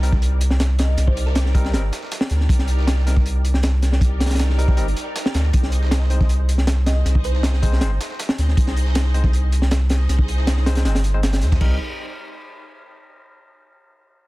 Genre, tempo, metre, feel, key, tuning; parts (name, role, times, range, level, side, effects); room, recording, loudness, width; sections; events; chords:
drum and bass, jungle; 158 BPM; 4/4; straight; C minor; A4 = 440 Hz
soft string machine; sustained chords; 0.0-11.8 s; Eb4 to Eb5; -32 LUFS; equal; ensemble chorus
barky tine electric piano; stabs; 0.0-11.8 s; G3 to C5; -33 LUFS; left 3 dB; dub echo
saturated sub bass; bass; 0.0-11.8 s; G1 to Eb2; -18 LUFS; equal
crunchy breakbeat drum kit; drums; 0.0-11.7 s; crash cymbal, hi-hat, kick drum, snare drum; -21 LUFS; equal
dusty soul sampler-style drum kit; drums; 0.0-11.6 s; hi-hat, snare drum; -35 LUFS; right 2 dB; overdrive, high-pass filter on hats, high-pass filter on snare, high-pass filter on room
thumb-piano-like synth pluck; melody; 0.8-1.6, 6.9-7.5 s; Bb4 to Eb5; -33 LUFS; equal; chorus, phaser, dub echo
studio reverb; dense, heavily limited modern master; -16 LUFS; side -20 dB against mid
0.0-11.6 A section; 11.6-13.1 B section
drop 0.0-11.6
0.0 Cm7; 5.5 Ab; 11.6 Cm7